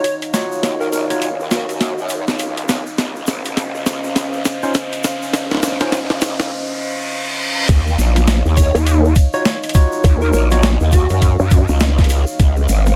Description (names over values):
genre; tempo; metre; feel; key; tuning
glitch hop; 102 BPM; 4/4; swing 61% on 16ths; Eb dorian; A4 = 440 Hz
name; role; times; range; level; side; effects
plucky unison lead; melody; 0.0-2.0, 8.6-11.4 s; Gb4 to Db5; -27 LUFS; equal; digital delay
dark analog pad; sustained chords; 0.0-13.0 s; Db4 to F5; -28 LUFS; equal; chorus, sidechain pumping
overdriven tine electric piano; stabs; 0.0-10.7 s; Db4 to Db5; -26 LUFS; equal; sidechain pumping, low-pass filter, digital delay
boom bap sampler-style drum kit; drums; 0.0-13.0 s; crash cymbal, hi-hat, snare drum; -22 LUFS; equal; none
tube shaker; percussion; 0.0-13.0 s; none; -33 LUFS; equal; none
riser and reverse cymbal; sound effects; 0.3-7.7 s; none; -29 LUFS; equal; none
growl bass; bass; 0.6-13.0 s; Ab1 to Gb2; -20 LUFS; equal; chorus, tube saturation, high-pass filter
electronic kick drum; drums; 7.7-12.5 s; none; -14 LUFS; equal; none
vowel-sweep wobble bass; bass; 8.7-11.7 s; Eb2 to Gb2; -16 LUFS; equal; chorus
room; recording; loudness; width
little or no reverb; none; -17 LUFS; mono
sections
0.0-7.7 A section; 7.7-13.0 B section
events
build-up 0.0-7.7; drum fill 0.0-6.5; riser 0.3-7.7; reverse cymbal 6.5-7.7; drop 7.7-13.0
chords
0.0 Ebm9; 3.0 Dbmaj9; 7.7 Ebm9; 12.4 Dbmaj9